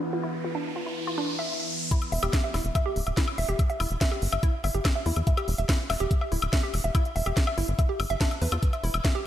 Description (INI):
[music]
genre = psychedelic trance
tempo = 143 BPM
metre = 4/4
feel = straight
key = E phrygian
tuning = A4 = 440 Hz
[part]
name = overtone-sweeping drone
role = sustained chords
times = 0.0-2.0 s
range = E3 to B3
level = -35 LUFS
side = equal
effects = chorus, built-in reverb, sidechain pumping
[part]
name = riser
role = sound effects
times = 0.0-1.9 s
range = none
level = -34 LUFS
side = right 1 dB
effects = none
[part]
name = woody wave-folded pluck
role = riff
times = 0.1-9.2 s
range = D4 to E5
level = -31 LUFS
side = right 1 dB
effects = chorus, phaser, auto-pan, cassette tape, sidechain pumping, analog delay
[part]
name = drum and bass drum kit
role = drums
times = 1.9-9.1 s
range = hi-hat, snare drum, woodblock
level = -31 LUFS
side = left 2 dB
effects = none
[part]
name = electronic kick drum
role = drums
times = 1.9-9.1 s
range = none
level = -24 LUFS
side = equal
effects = none
[part]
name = tight sequencer bass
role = bass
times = 2.1-9.0 s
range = D1 to E2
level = -28 LUFS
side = equal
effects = none
[sound]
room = moderate lush hall reverb, RT60 1.6 s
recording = dreamy mix soaked in reverb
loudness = -24 LUFS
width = side -12 dB against mid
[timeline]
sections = 0.0-1.9 A section; 1.9-9.3 B section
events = riser 0.0-1.9; filter sweep on synth arpeggio sound 0.0-1.9; drop 1.9-9.3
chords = 0.0 E5